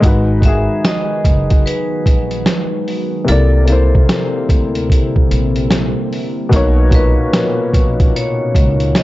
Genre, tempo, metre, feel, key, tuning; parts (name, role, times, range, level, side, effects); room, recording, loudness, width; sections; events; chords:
lo-fi hip hop; 74 BPM; 4/4; swing 64% on 16ths; G# minor; A4 = 439 Hz
dark upright piano; accompaniment; 0.0-9.0 s; A#2 to D5; -18 LUFS; left 2 dB; low-pass filter
deep dark ambient pad; sustained chords; 1.2-9.0 s; C#3 to B4; -26 LUFS; right 2 dB; chorus, built-in reverb, low-pass filter
upright bass; bass; 0.0-8.9 s; F#1 to D2; -16 LUFS; equal
lo-fi sampler-style drum kit; drums; 0.0-9.0 s; hi-hat, kick drum, snare drum; -14 LUFS; equal
vibraphone with hard mallets; melody; 0.5-9.0 s; A4 to E5; -22 LUFS; left 1 dB; low-pass filter
small room reverb; dry, gritty hardware recording, nothing above 7.8 kHz; -12 LUFS; side -17 dB against mid
0.0-9.0 A section
0.0 G#m7; 3.3 C9; 6.5 Bmaj9